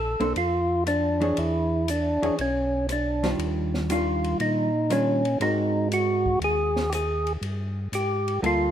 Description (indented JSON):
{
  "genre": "soul jazz organ trio",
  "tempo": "119 BPM",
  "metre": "4/4",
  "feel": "swing 68% on 8ths",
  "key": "unclear",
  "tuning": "A4 = 439 Hz",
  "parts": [
    { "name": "percussive tonewheel organ", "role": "melody", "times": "0.0-8.7 s", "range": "C#4 to A4", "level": "-24 LUFS", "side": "equal", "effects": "slow rotary speaker, overdrive" },
    { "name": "mellow tonewheel organ", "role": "bass", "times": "0.0-8.7 s", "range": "Bb1 to Bb2", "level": "-29 LUFS", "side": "equal", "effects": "slow rotary speaker" },
    { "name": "vintage hollow-body jazz guitar", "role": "accompaniment", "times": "0.2-8.7 s", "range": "Eb3 to Db5", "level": "-28 LUFS", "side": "right 2 dB", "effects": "none" },
    { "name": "open jazz drum kit", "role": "drums", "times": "0.2-8.6 s", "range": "hi-hat, kick drum, ride cymbal, rim click, snare drum", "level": "-36 LUFS", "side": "left 2 dB", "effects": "none" }
  ],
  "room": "light reverb",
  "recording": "rough home demo mix",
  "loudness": "-22 LUFS",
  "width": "side -10 dB against mid",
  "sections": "0.0-8.7 A section",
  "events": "none",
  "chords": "0.0 Bbmaj7; 1.4 E6; 3.4 Ebmaj9; 5.4 Ab9; 7.4 Gm9"
}